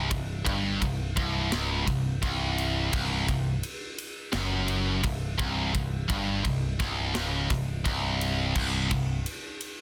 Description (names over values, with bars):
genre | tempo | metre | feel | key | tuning
heavy metal | 85 BPM | 4/4 | straight | unclear | A4 = 440 Hz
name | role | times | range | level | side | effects
heavy high-gain guitar | riff | 0.0-9.2 s | C2 to G2 | -31 LUFS | equal | distortion
growling picked electric bass | bass | 0.0-9.2 s | C1 to G1 | -34 LUFS | equal | overdrive
tight metal drum kit | drums | 0.1-9.8 s | crash cymbal, kick drum, ride cymbal, snare drum | -35 LUFS | equal | none
room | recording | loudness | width
little or no reverb | dense, heavily limited modern master | -29 LUFS | mono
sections
0.0-9.8 A section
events
half time 0.0-9.8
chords
0.0 C5